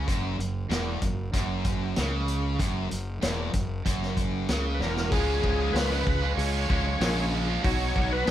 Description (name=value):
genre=classic rock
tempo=95 BPM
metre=4/4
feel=straight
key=unclear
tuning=A4 = 442 Hz
part: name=overdriven semi-hollow guitar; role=riff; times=0.0-8.3 s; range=E2 to F#4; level=-32 LUFS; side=right 7 dB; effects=none
part: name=tight distorted guitar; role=riff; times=0.0-8.3 s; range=E2 to F#4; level=-35 LUFS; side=left 8 dB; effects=distortion
part: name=fuzz fingered electric bass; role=bass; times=0.0-8.3 s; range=E1 to C#2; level=-29 LUFS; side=equal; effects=overdrive
part: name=vintage drum kit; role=drums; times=0.1-8.3 s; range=hi-hat, kick drum, snare drum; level=-30 LUFS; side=equal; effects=none
part: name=overdriven tonewheel organ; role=melody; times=4.7-8.3 s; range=G#4 to C#5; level=-30 LUFS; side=left 1 dB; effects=slow rotary speaker, chorus vibrato
part: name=barky reed electric piano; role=accompaniment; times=5.1-8.3 s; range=B3 to G#4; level=-37 LUFS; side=left 6 dB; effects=overdrive, fast tremolo
room=light reverb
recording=band playing live in one room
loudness=-24 LUFS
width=side -12 dB against mid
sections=0.0-5.1 A section; 5.1-8.3 B section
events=drum fill 4.8-5.1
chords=0.0 F#5; 5.1 C#; 7.6 B